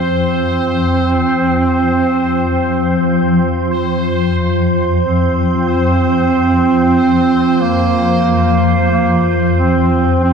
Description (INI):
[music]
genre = dark ambient drone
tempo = 46 BPM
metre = 4/4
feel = straight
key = unclear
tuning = A4 = 440 Hz
[part]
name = warm duduk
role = melody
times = 0.0-10.3 s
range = Bb3 to C4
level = -15 LUFS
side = right 2 dB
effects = analog delay
[part]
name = deep dark ambient pad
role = sustained chords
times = 0.0-10.3 s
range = F4 to G5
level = -22 LUFS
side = left 2 dB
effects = chorus, built-in reverb
[part]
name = swarming drone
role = drone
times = 0.0-10.3 s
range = F2 to F3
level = -15 LUFS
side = left 1 dB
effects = built-in reverb
[part]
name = bubbling stepped-filter texture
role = texture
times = 0.0-10.3 s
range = C5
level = -21 LUFS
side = right 4 dB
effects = chorus, built-in reverb
[sound]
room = wet spring reverb, RT60 2.6 s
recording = echo-heavy mix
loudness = -11 LUFS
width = side -6 dB against mid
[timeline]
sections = 0.0-10.3 A section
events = none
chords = 0.0 Fsus2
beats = 1.10 2.40 3.71 | 5.01 6.32 7.62 8.93 | 10.23